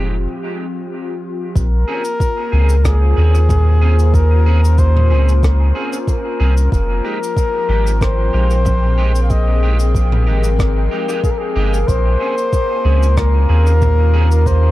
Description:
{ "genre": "ambient dub", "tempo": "93 BPM", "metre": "4/4", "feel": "straight", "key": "Bb dorian", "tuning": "A4 = 445 Hz", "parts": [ { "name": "airy breathy pad", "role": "sustained chords", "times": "0.0-14.7 s", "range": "F3 to G5", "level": "-25 LUFS", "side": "equal", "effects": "chorus" }, { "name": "clean electric guitar", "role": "stabs", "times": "0.0-14.3 s", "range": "Ab3 to Ab4", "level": "-28 LUFS", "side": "right 3 dB", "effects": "ensemble chorus, dub echo" }, { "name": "soft dub sub bass", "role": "bass", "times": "0.0-14.7 s", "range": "F1 to Eb2", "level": "-12 LUFS", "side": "equal", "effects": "none" }, { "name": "drifting glass-harmonics texture", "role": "texture", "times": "0.0-14.7 s", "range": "G3 to G5", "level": "-26 LUFS", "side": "left 4 dB", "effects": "chorus, built-in reverb" }, { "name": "trumpet with bucket mute", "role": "melody", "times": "1.6-14.7 s", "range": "Ab4 to F5", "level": "-22 LUFS", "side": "left 1 dB", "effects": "dub echo" }, { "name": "crisp fusion drum kit", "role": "drums", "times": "1.6-14.6 s", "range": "cabasa, rim click, toms", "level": "-28 LUFS", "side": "right 1 dB", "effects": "dub echo" }, { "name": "electronic kick drum", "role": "drums", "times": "1.6-14.6 s", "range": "none", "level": "-17 LUFS", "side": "equal", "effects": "none" } ], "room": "studio ambience", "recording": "echo-heavy mix", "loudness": "-12 LUFS", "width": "side -16 dB against mid", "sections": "0.0-1.6 A section; 1.6-14.7 B section", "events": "break 0.3-1.6", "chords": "0.0 Fsus2; 1.6 Bbm9; 6.7 Fm9; 11.9 Bbm9", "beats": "0.27 0.91 | 1.56 2.20 2.85 3.49 | 4.14 4.79 5.43 6.08 | 6.72 7.37 8.01 8.65 | 9.30 9.95 10.59 11.24 | 11.88 12.53 13.17 13.82 | 14.46" }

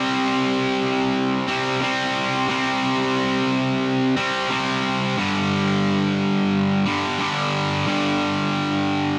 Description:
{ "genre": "rock", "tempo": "89 BPM", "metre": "4/4", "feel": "straight", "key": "unclear", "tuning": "A4 = 440 Hz", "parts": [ { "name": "distorted electric guitar", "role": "solo", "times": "0.0-9.2 s", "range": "G2 to C4", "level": "-21 LUFS", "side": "equal", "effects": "overdrive" } ], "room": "little or no reverb", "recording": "dry, close 1970s-style studio recording", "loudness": "-21 LUFS", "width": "mono", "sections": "0.0-9.2 A section", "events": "none", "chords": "0.0 C5; 5.2 G5", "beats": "0.48 1.15 1.82 | 2.49 3.16 3.83 4.51 | 5.18 5.85 6.53 7.20 | 7.87 8.54" }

